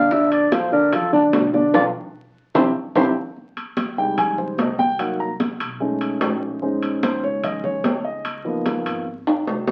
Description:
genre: Afro-Cuban jazz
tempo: 147 BPM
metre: 4/4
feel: straight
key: unclear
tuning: A4 = 440 Hz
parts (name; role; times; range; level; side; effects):
- growling clarinet; melody; 0.0-3.1 s; D4 to F5; -24 LUFS; equal; none
- warm concert grand piano; accompaniment; 0.0-9.0 s; D3 to Bb5; -22 LUFS; equal; none
- upright bass; bass; 0.0-9.7 s; Ab1 to F2; -41 LUFS; equal; none
- bongos; percussion; 0.1-3.1 s; none; -30 LUFS; equal; none
- congas; percussion; 0.1-9.7 s; none; -29 LUFS; equal; none
- timbales; percussion; 0.3-9.7 s; none; -27 LUFS; equal; none
room: moderate small room ambience, RT60 0.5 s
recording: very old 78 rpm record, vinyl crackle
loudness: -21 LUFS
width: mono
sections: 0.0-3.4 A section; 3.4-9.7 A section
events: clarinet solo 0.0-3.4; band accent 1.7-3.4; drum fill 2.8-3.4, 9.3-9.7; grand piano solo 3.4-9.7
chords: 0.1 Bbmaj7; 1.7 B7(b5, no3); 2.6 C; 3.4 Cm; 5.0 Cm7b5; 5.8 B13; 6.6 Bbm11; 8.3 Db13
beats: | 0.12 0.52 0.93 1.33 | 1.74 2.15 2.56 2.96 | 3.37 3.77 4.18 4.59 | 5.00 5.40 5.81 6.22 | 6.63 7.03 7.44 7.85 | 8.26 8.66 9.07 9.48

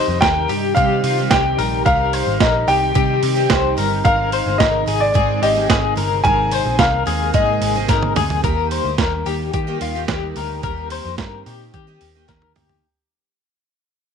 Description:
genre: jangly indie pop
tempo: 109 BPM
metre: 4/4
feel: straight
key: Eb major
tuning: A4 = 442 Hz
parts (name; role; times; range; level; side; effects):
- warm upright piano; melody; 0.0-8.1 s; D5 to Ab5; -19 LUFS; equal; slapback echo
- picked twelve-string acoustic guitar; accompaniment; 0.0-12.8 s; Ab2 to Ab4; -26 LUFS; right 14 dB; wide subtle chorus
- soft string machine; sustained chords; 0.0-12.8 s; C3 to G4; -29 LUFS; equal; ensemble chorus
- electric guitar through a small old amp; arpeggios; 0.0-12.8 s; F4 to C5; -22 LUFS; left 12 dB; tremolo, slapback echo
- vintage muted picked electric bass; bass; 0.1-12.8 s; G1 to Eb3; -24 LUFS; equal; none
- boom bap sampler-style drum kit; drums; 0.2-12.8 s; hi-hat, kick drum, snare drum, toms; -21 LUFS; right 4 dB; none
room: light reverb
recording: 1960s-style stereo with parts hard left and right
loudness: -15 LUFS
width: side -7 dB against mid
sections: 0.0-8.4 A section; 8.4-12.8 B section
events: drum fill 7.9-8.4, 12.3-12.8; fade-out 8.4-12.8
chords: 0.0 Cm; 4.1 Ab; 8.4 Eb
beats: 0.22 0.77 1.31 | 1.86 2.41 2.96 3.50 | 4.05 4.60 5.15 5.70 | 6.24 6.79 7.34 7.89 | 8.44 8.99 9.54 10.09 | 10.63 11.18 11.73 12.28

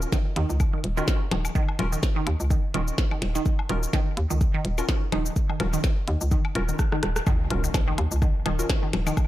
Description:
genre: minimal techno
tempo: 126 BPM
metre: 4/4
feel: swing 56% on 16ths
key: Eb minor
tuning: A4 = 439 Hz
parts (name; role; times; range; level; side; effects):
- hollow knocking FM bass; bass; 0.0-9.1 s; Eb1 to Eb2; -26 LUFS; equal; tube saturation, sidechain pumping
- minimal click drum kit; drums; 0.0-9.3 s; cabasa, hi-hat, rim click, snare drum; -31 LUFS; equal; none
- resonant blip pluck; riff; 0.1-9.1 s; Eb3; -31 LUFS; right 2 dB; phaser, sidechain pumping, diffuse ambient delay
- electronic kick drum; drums; 0.1-9.3 s; none; -24 LUFS; equal; none
- woodblock and congas; percussion; 0.6-9.3 s; none; -35 LUFS; left 6 dB; analog delay
- wavetable chord stab; stabs; 1.0-8.7 s; Db4 to Bb4; -34 LUFS; left 2 dB; phaser, cassette tape, analog delay
- impact; sound effects; 7.3-9.2 s; none; -33 LUFS; equal; none
room: digital ambience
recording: none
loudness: -22 LUFS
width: side -15 dB against mid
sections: 0.0-7.3 A section; 7.3-9.3 B section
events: drum fill 6.8-7.3; drop 7.3-9.3; impact 7.3-9.2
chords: 0.0 Eb7(no3)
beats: 0.12 0.60 1.08 | 1.55 2.03 2.50 2.98 | 3.46 3.93 4.41 4.89 | 5.36 5.84 6.32 6.79 | 7.27 7.74 8.22 8.70 | 9.17

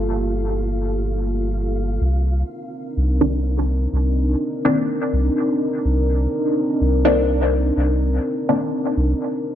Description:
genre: dub techno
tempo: 125 BPM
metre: 4/4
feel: swing 53% on 16ths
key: C minor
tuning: A4 = 439 Hz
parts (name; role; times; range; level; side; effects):
- dark analog pad; sustained chords; 0.0-9.6 s; Bb3 to Bb4; -23 LUFS; equal; chorus, vintage 12-bit sampler grit
- soft dub sub bass; bass; 0.0-9.1 s; G1 to C2; -20 LUFS; equal; none
- flickering grainy texture; texture; 0.0-2.0 s; F4 to F5; -34 LUFS; equal; built-in reverb
- filtered dub chord stab; stabs; 3.2-8.8 s; Eb3 to D4; -21 LUFS; left 1 dB; phaser, dub echo
room: light reverb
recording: echo-heavy mix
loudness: -18 LUFS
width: side -10 dB against mid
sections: 0.0-2.0 A section; 2.0-9.6 B section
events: filter sweep on synth stab 2.0-9.6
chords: 0.0 Gm9; 2.0 Cm9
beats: | 0.09 0.57 1.05 1.53 | 2.01 2.49 2.97 3.45 | 3.93 4.41 4.89 5.37 | 5.85 6.33 6.81 7.29 | 7.77 8.25 8.73 9.21

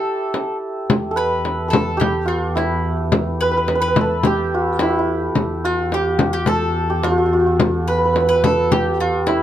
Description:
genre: Persian modal ensemble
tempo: 108 BPM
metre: 4/4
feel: straight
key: E dastgah shur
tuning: A4 = 439 Hz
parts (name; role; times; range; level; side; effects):
- santur; melody; 0.0-9.4 s; E4 to B4; -19 LUFS; right 1 dB; none
- bowl-back mandolin; second line; 0.0-9.4 s; E4 to B4; -25 LUFS; left 2 dB; none
- frame drum; percussion; 0.3-9.4 s; none; -19 LUFS; left 2 dB; none
- rich double bass; drone; 0.9-9.4 s; E2; -24 LUFS; equal; none
room: light reverb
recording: close, detailed microphones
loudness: -16 LUFS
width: side -11 dB against mid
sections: 0.9-9.4 A section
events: none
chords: none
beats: 0.34 | 0.90 1.46 2.01 2.57 | 3.13 3.69 4.25 4.80 | 5.36 5.92 6.48 7.04 | 7.60 8.15 8.71 9.27

